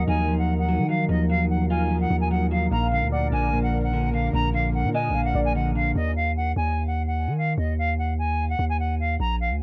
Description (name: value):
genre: hip hop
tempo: 148 BPM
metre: 4/4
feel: half-time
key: Eb harmonic minor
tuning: A4 = 440 Hz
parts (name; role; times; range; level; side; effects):
- silver concert flute; melody; 0.0-9.6 s; Eb5 to Bb5; -30 LUFS; equal; low-pass filter
- warm velvety synth lead; second line; 0.0-5.5 s; D5 to F5; -35 LUFS; equal; chorus, tape echo
- mellow electric guitar; accompaniment; 0.0-6.0 s; Bb2 to F4; -28 LUFS; equal; low-pass filter
- sweeping resonant pad; sustained chords; 0.0-5.9 s; Eb3 to Bb4; -36 LUFS; equal; chorus
- long sustained 808-style bass; bass; 0.0-9.6 s; Bb1 to Eb3; -27 LUFS; equal; none
room: little or no reverb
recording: none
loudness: -24 LUFS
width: mono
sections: 0.0-6.0 A section; 6.0-9.6 B section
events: none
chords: 0.0 Ebmadd9; 2.7 Bb; 6.0 Ebm